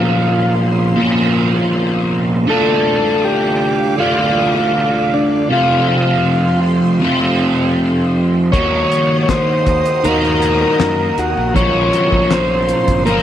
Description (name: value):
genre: psychedelic rock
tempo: 79 BPM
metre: 4/4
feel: straight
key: unclear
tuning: A4 = 440 Hz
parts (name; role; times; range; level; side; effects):
- overdriven combo organ; melody; 0.0-13.2 s; D4 to C#5; -18 LUFS; left 2 dB; tape echo
- warm studio string section; sustained chords; 0.0-13.2 s; Db4 to Eb6; -26 LUFS; right 10 dB; none
- overdriven semi-hollow guitar; riff; 0.0-13.2 s; F2 to Gb4; -14 LUFS; equal; rotary speaker
- modern bright fingered electric bass; bass; 8.5-13.2 s; G1 to Gb2; -21 LUFS; equal; none
- cloth-damped thuddy drum kit; drums; 8.5-13.2 s; hi-hat, kick drum, snare drum; -19 LUFS; left 1 dB; none
room: light reverb, studio reverb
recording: 1960s-style stereo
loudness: -12 LUFS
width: side -10 dB against mid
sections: 0.0-13.2 A section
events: none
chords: 0.0 Bbmadd9; 2.5 Dm; 5.5 Fadd9; 8.5 Ebm; 11.6 Bbmadd9